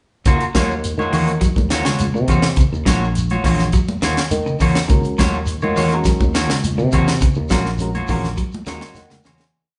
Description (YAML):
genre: afrobeat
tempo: 103 BPM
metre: 4/4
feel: straight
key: Eb dorian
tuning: A4 = 437 Hz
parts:
  - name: clean electric guitar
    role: arpeggios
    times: 0.3-9.4 s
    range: Db3 to Gb3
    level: -26 LUFS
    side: equal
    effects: none
  - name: electric guitar at the edge of break-up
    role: stabs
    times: 0.3-9.4 s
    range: Bb3 to Db5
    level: -25 LUFS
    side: equal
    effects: none
  - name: sustaining fretless electric bass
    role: bass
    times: 0.3-9.2 s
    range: Bb1 to Eb3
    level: -24 LUFS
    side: equal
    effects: none
  - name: tight funk drum kit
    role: drums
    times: 0.3-9.5 s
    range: hi-hat, kick drum, snare drum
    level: -21 LUFS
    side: equal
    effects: none
  - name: congas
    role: percussion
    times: 0.3-9.4 s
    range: none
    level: -26 LUFS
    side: equal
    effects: none
  - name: shekere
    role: percussion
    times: 0.3-9.5 s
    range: none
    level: -32 LUFS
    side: equal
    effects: none
  - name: overdriven reed electric piano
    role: accompaniment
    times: 4.9-9.5 s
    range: Ab3 to Ab5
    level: -28 LUFS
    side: equal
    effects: harmonic tremolo
room: wet large studio reverb, RT60 0.8 s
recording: band playing live in one room, nothing above 10.4 kHz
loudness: -18 LUFS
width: mono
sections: 0.3-9.5 groove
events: fade-out 7.2-9.5; reed electric piano fill 8.4-9.5; drum fill 9.0-9.5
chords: 0.3 Ebm9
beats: | 0.26 0.84 1.42 2.00 | 2.58 3.16 3.74 4.32 | 4.90 5.48 6.06 6.64 | 7.22 7.80 8.38 8.96